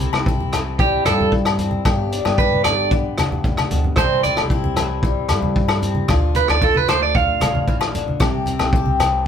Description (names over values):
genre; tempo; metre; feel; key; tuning
highlife guitar band; 113 BPM; 4/4; straight; C major; A4 = 440 Hz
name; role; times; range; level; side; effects
picked old ladder-braced acoustic guitar; accompaniment; 0.0-9.3 s; G2 to G4; -24 LUFS; left 6 dB; none
upright bass; bass; 0.0-9.3 s; G1 to G2; -23 LUFS; equal; none
vintage drum kit; drums; 0.0-9.1 s; hi-hat, kick drum, rim click; -21 LUFS; equal; none
congas; percussion; 0.0-9.1 s; none; -25 LUFS; right 1 dB; none
agogo bells; percussion; 0.1-9.1 s; none; -26 LUFS; left 11 dB; none
electric guitar at the edge of break-up; arpeggios; 0.8-8.2 s; G4 to F5; -18 LUFS; right 6 dB; none
room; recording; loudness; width
moderate studio reverb, RT60 0.5 s; band playing live in one room; -16 LUFS; side -8 dB against mid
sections
0.0-9.3 A section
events
clean electric guitar solo 0.0-9.3; drum fill 3.5-4.0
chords
0.0 C; 1.9 G; 4.0 C; 6.1 Dm; 8.2 C